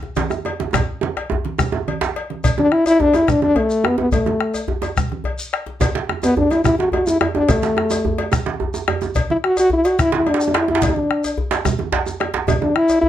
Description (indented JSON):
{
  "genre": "west african traditional, West African drum ensemble",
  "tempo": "143 BPM (dotted quarters)",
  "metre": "12/8",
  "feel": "straight",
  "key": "D major pentatonic",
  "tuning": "A4 = 440 Hz",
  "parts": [
    { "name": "bombo", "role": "percussion", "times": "0.0-12.9 s", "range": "none", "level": "-22 LUFS", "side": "left 3 dB", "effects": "none" },
    { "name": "djembe", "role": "percussion", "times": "0.0-13.1 s", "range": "none", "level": "-27 LUFS", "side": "left 2 dB", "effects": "none" },
    { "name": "congas", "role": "percussion", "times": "0.2-12.8 s", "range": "none", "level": "-26 LUFS", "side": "right 6 dB", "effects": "none" },
    { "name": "cowbell", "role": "percussion", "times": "0.2-13.0 s", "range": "none", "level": "-27 LUFS", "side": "left 5 dB", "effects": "none" },
    { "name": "djembe", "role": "percussion", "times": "0.2-12.7 s", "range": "none", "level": "-23 LUFS", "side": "right 7 dB", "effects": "none" },
    { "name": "shekere", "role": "percussion", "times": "0.2-13.0 s", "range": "none", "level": "-29 LUFS", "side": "left 2 dB", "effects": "none" },
    { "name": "warm French horn", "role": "melody", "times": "2.6-13.1 s", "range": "A3 to F#4", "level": "-16 LUFS", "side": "left 1 dB", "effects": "none" }
  ],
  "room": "moderate studio reverb, RT60 0.5 s",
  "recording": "none",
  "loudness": "-16 LUFS",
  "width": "side -11 dB against mid",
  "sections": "0.0-2.4 A section; 2.4-13.1 B section",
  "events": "speeding up 0.0-13.1; drum fill 0.7-2.4",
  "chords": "none",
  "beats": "0.31 | 0.74 1.17 1.59 2.02 | 2.44 2.86 3.29 3.71 | 4.13 4.55 4.97 5.39 | 5.82 6.24 6.66 7.07 | 7.49 7.91 8.33 8.75 | 9.16 9.58 10.00 10.41 | 10.83 11.24 11.65 12.07 | 12.48 12.89"
}